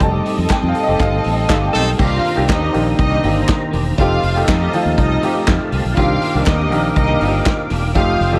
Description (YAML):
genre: disco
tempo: 121 BPM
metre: 4/4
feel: straight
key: C dorian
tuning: A4 = 440 Hz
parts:
  - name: dark studio string section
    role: second line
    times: 0.0-8.4 s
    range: C4 to F5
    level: -24 LUFS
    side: equal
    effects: none
  - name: electric guitar at the edge of break-up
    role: accompaniment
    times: 0.0-8.4 s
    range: Eb3 to G4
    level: -29 LUFS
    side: equal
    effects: ensemble chorus
  - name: warm baby grand piano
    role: accompaniment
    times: 0.0-8.4 s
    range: Eb3 to A5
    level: -23 LUFS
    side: equal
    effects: none
  - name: tonewheel organ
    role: sustained chords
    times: 0.0-8.4 s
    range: Eb3 to Eb6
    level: -29 LUFS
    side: equal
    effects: overdrive, chorus vibrato, slow rotary speaker
  - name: warm horn section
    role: stabs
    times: 0.0-1.9 s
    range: C4 to A4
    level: -24 LUFS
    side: equal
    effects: none
  - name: fingered electric bass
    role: bass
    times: 0.0-8.4 s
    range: E1 to F2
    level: -21 LUFS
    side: equal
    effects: none
  - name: vintage drum kit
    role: drums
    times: 0.0-8.3 s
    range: crash cymbal, handclaps, hi-hat, kick drum, snare drum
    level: -23 LUFS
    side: equal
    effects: none
  - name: group handclap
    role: percussion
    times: 0.5-7.6 s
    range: none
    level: -30 LUFS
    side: equal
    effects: none
room: light reverb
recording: none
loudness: -16 LUFS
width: mono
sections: 0.0-2.0 A section; 2.0-8.4 B section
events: grand piano solo 0.0-2.0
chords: 0.0 F9; 2.0 Cm9; 4.0 F9; 6.0 Cm9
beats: | 0.01 0.50 1.00 1.50 | 2.00 2.49 2.99 3.49 | 3.98 4.48 4.98 5.47 | 5.97 6.46 6.96 7.46 | 7.95